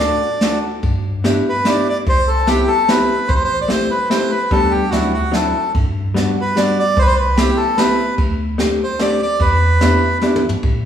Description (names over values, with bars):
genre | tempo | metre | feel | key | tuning
musette waltz | 147 BPM | 3/4 | straight | G major | A4 = 441 Hz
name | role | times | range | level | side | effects
bandoneon | melody | 0.0-10.2 s | F#4 to D5 | -17 LUFS | equal | none
vintage hollow-body jazz guitar | accompaniment | 0.0-10.4 s | F#3 to A4 | -19 LUFS | left 1 dB | none
mellow tine electric piano | bass | 0.0-10.9 s | A1 to A2 | -21 LUFS | equal | medium stereo tremolo
jazz brush drum kit | drums | 0.4-10.7 s | kick drum, ride cymbal, snare drum, toms | -21 LUFS | equal | none
room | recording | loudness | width
wet recital hall reverb, RT60 1.7 s | recorded in a church or concert hall, small room reverb | -14 LUFS | side -9 dB against mid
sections
0.8-10.9 A section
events
drum fill 10.2-10.6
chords
0.0 D; 0.8 G6; 2.1 Cmaj7; 3.3 Am7; 4.5 G/D; 4.9 D9; 5.7 Gmaj7; 7.0 Cmaj7; 8.2 D7sus4; 9.4 Em7